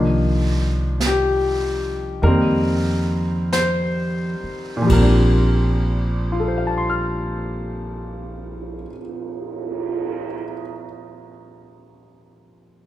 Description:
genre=jazz ballad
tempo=42-52 BPM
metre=4/4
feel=swing 67% on 8ths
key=Bb major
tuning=A4 = 436 Hz
part: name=clear concert grand piano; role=accompaniment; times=0.0-12.9 s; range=Bb2 to F6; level=-21 LUFS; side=left 1 dB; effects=none
part: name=upright bass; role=bass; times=0.0-8.8 s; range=Bb1 to F2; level=-21 LUFS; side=equal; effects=none
part: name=jazz brush drum kit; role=drums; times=1.0-10.3 s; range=brushed snare drum, cymbal swell, hi-hat, kick drum, ride cymbal, snare drum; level=-29 LUFS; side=right 3 dB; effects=none
room=moderate recital hall reverb, RT60 1.4 s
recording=recorded in a church or concert hall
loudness=-18 LUFS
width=side -14 dB against mid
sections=0.0-4.9 A section; 4.9-10.6 B section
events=slowing down 0.0-4.9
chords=0.0 Cm11; 2.2 F9sus4; 4.9 Bbmaj13

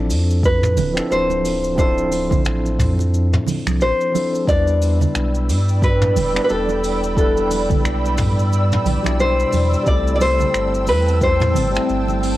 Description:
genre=sunset chillout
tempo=89 BPM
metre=4/4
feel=swing 58% on 16ths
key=unclear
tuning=A4 = 439 Hz
part: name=nylon-string guitar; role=melody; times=0.0-12.4 s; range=A4 to D5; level=-20 LUFS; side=left 1 dB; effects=analog delay
part: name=tine electric piano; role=accompaniment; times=0.0-12.4 s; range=B2 to D5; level=-24 LUFS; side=equal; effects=medium tremolo, auto-pan, cassette tape, analog delay
part: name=warm sub bass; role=bass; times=0.0-12.4 s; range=D1 to G2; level=-20 LUFS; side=equal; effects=tube saturation
part: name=vintage brush drum kit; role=drums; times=0.1-12.4 s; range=cabasa, finger snaps, hi-hat, toms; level=-26 LUFS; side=equal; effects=cassette tape
part: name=congas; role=percussion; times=0.1-12.2 s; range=none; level=-26 LUFS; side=right 7 dB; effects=none
part: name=electronic kick drum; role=drums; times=0.4-11.4 s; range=none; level=-19 LUFS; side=equal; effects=overdrive, cassette tape
part: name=ethereal airy pad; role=sustained chords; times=5.2-12.4 s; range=C4 to E6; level=-25 LUFS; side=equal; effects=ensemble chorus, built-in reverb, tremolo, cassette tape
room=light reverb, small room ambience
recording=home recording on cassette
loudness=-15 LUFS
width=side -15 dB against mid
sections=0.0-12.4 A section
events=none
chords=0.0 Dm9; 4.5 Em7; 9.9 C6

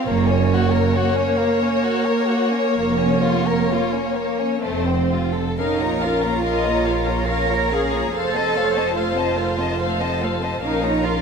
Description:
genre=classical, slow romantic movement for string orchestra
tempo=62-74 BPM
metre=3/4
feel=rubato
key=Bb minor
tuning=A4 = 438 Hz
part: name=warm chamber violin section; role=melody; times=0.0-11.2 s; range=A4 to Eb5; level=-26 LUFS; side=left 6 dB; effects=none
part: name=warm studio violin section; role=second line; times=0.0-11.2 s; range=A3 to Bb5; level=-24 LUFS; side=left 2 dB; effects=none
part: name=warm chamber viola section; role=accompaniment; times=0.0-11.2 s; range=A3 to C5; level=-23 LUFS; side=right 1 dB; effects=none
part: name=warm chamber cello section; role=bass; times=0.1-11.2 s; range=F2 to Bb4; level=-24 LUFS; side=right 5 dB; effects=none
part: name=warm chamber double bass section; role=bass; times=0.1-11.2 s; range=F1 to Bb1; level=-25 LUFS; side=right 3 dB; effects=none
room=wet concert hall reverb, RT60 2.3 s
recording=none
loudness=-18 LUFS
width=side -6 dB against mid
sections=0.0-5.6 A section; 5.6-11.2 B section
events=none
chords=0.1 Gb; 2.8 Bbm/F; 4.6 F; 5.6 Bbm; 8.1 F7; 10.6 Bbm

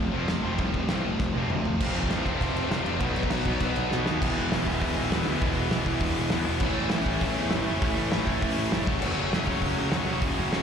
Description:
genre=punk rock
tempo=200 BPM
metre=4/4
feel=straight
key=unclear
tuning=A4 = 439 Hz
part: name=raw garage guitar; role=riff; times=0.0-10.6 s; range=E2 to B3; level=-32 LUFS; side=right 12 dB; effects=overdrive, slapback echo
part: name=tight distorted guitar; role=riff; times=0.0-10.6 s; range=F2 to F#4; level=-30 LUFS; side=left 11 dB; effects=distortion, slapback echo
part: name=tight distorted guitar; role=riff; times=0.0-10.6 s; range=E2 to B3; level=-33 LUFS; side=right 1 dB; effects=distortion, slapback echo
part: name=fuzz picked electric bass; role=bass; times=0.0-10.6 s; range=E1 to E2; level=-30 LUFS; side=equal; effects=overdrive
part: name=loose indie drum kit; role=drums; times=0.3-10.6 s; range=crash cymbal, hi-hat, kick drum, snare drum, toms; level=-29 LUFS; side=equal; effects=none
room=little or no reverb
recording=live gig heard through the venue's PA, recital hall reverb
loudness=-24 LUFS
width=side -7 dB against mid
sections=0.0-1.8 A section; 1.8-4.2 B section; 4.2-10.6 C section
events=drum fill 1.2-1.8, 3.9-4.2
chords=0.0 F; 3.0 B; 4.2 E; 6.6 A; 8.9 F#m

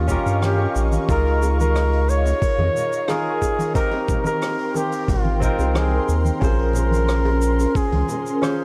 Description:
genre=sunset chillout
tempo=90 BPM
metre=4/4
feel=straight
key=Ab major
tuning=A4 = 441 Hz
part: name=mellow flugelhorn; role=melody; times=0.0-8.6 s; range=F4 to Db5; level=-27 LUFS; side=equal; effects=vintage 12-bit sampler grit, digital delay
part: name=barky tine electric piano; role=accompaniment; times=0.0-8.6 s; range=C4 to G5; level=-28 LUFS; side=equal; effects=none
part: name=ethereal airy pad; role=sustained chords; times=0.0-8.6 s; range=Db4 to Db6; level=-31 LUFS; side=equal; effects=ensemble chorus, built-in reverb
part: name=round analog bass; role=bass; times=0.0-8.0 s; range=Ab1 to G2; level=-22 LUFS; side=equal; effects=tube saturation
part: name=electronic kick drum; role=drums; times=0.1-7.9 s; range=none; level=-25 LUFS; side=equal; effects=none
part: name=jazz brush drum kit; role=drums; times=0.1-8.6 s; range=hi-hat, rim click, shaker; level=-36 LUFS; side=equal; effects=none
part: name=congas and bongos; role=percussion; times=0.1-8.6 s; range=none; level=-32 LUFS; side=equal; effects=none
room=light reverb, studio reverb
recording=none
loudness=-20 LUFS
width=mono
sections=0.0-8.6 A section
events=none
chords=0.0 Eb9; 1.1 Db69; 3.8 Abmaj9; 6.4 Bbm9

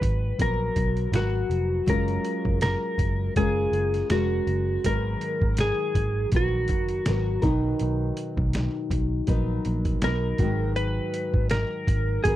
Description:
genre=indie pop, bedroom pop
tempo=81 BPM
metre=4/4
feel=swing 55% on 16ths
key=G# dorian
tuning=A4 = 440 Hz
part: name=clean lap steel guitar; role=melody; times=0.0-12.4 s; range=F#4 to B4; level=-28 LUFS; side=equal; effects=analog chorus, slapback echo
part: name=nylon-string guitar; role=accompaniment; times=0.0-12.4 s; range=G#2 to A#4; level=-29 LUFS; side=left 2 dB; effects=wide subtle chorus, warbly pitch drift
part: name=vintage muted picked electric bass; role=bass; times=0.0-12.4 s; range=E#1 to B1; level=-26 LUFS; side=equal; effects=none
part: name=trip hop sampler-style drum kit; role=drums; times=0.0-12.4 s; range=hi-hat, kick drum, snare drum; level=-27 LUFS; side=equal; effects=none
room=light reverb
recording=dry, close 1970s-style studio recording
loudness=-22 LUFS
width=side -14 dB against mid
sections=0.0-12.4 A section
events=none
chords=0.0 G#m9; 1.9 F#maj9; 4.8 G#m9; 7.4 Bmaj7; 10.4 G#m9

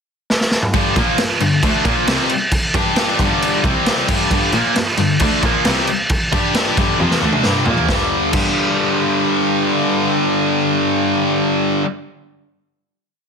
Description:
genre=hard rock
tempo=134 BPM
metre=4/4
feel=straight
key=G minor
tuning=A4 = 440 Hz
part: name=raw garage drum kit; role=drums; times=0.3-8.5 s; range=crash cymbal, kick drum, snare drum, toms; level=-18 LUFS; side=equal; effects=none
part: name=tight distorted guitar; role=riff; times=0.7-11.9 s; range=F2 to G4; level=-19 LUFS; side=left 14 dB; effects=distortion
part: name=tight distorted guitar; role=riff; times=0.7-11.9 s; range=F2 to G4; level=-19 LUFS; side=right 14 dB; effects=distortion
part: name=warm cello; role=bass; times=0.7-8.4 s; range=C2 to Bb2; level=-23 LUFS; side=right 1 dB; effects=none
room=light reverb, small room ambience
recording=dense, heavily limited modern master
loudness=-14 LUFS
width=side -6 dB against mid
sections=0.0-0.7 pickup bar; 0.7-7.9 riff; 7.9-11.5 final chord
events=drum fill 0.3-0.7, 7.0-7.9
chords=0.0 N.C.; 0.7 Gm; 3.6 C5; 4.1 Gm; 7.9 G5

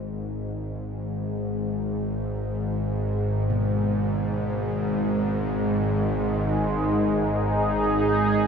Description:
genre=dark ambient drone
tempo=free time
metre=none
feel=none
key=G# minor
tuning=A4 = 439 Hz
part: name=bowed-like drone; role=drone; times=0.0-8.5 s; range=G#1 to G#2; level=-24 LUFS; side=equal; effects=built-in reverb
part: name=gamelan-type bossed gongs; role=arpeggios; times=3.5-8.5 s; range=B2 to G#3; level=-39 LUFS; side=equal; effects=none
part: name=sweeping resonant pad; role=sustained chords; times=4.2-8.5 s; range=G#3 to G#5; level=-24 LUFS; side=right 1 dB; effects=chorus
room=wet cathedral reverb, RT60 5.2 s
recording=in a vast, echoing space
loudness=-23 LUFS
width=side -6 dB against mid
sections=0.0-8.5 A section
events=none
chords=0.0 G#5

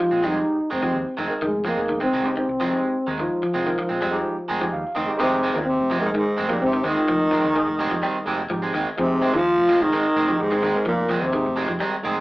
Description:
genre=afrobeat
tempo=127 BPM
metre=4/4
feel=straight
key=F minor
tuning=A4 = 439 Hz
part: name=trombone with bucket mute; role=melody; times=0.0-11.7 s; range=F3 to F4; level=-22 LUFS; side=equal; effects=none
part: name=overdriven tine electric piano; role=accompaniment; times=0.0-12.2 s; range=Ab3 to Ab5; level=-29 LUFS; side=right 1 dB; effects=none
part: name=electric guitar at the edge of break-up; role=arpeggios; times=0.0-12.0 s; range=Db3 to G3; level=-29 LUFS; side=left 1 dB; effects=none
part: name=electric guitar at the edge of break-up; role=stabs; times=0.1-12.2 s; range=Eb3 to C4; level=-26 LUFS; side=right 2 dB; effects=none
part: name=hollow-body short-scale fingered electric bass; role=bass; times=0.1-12.2 s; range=F1 to F2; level=-35 LUFS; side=equal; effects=none
part: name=raspy tenor saxophone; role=second line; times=5.2-11.7 s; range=Ab2 to F3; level=-26 LUFS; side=right 1 dB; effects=none
part: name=warm trombone section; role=second line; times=5.2-11.7 s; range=Ab2 to F3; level=-31 LUFS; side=left 1 dB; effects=none
room=moderate studio ambience, RT60 0.5 s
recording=band playing live in one room, small speaker sound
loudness=-20 LUFS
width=side -20 dB against mid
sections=0.0-5.2 A section; 5.2-12.2 B section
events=tine electric piano fill 4.3-5.2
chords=0.0 Fm7

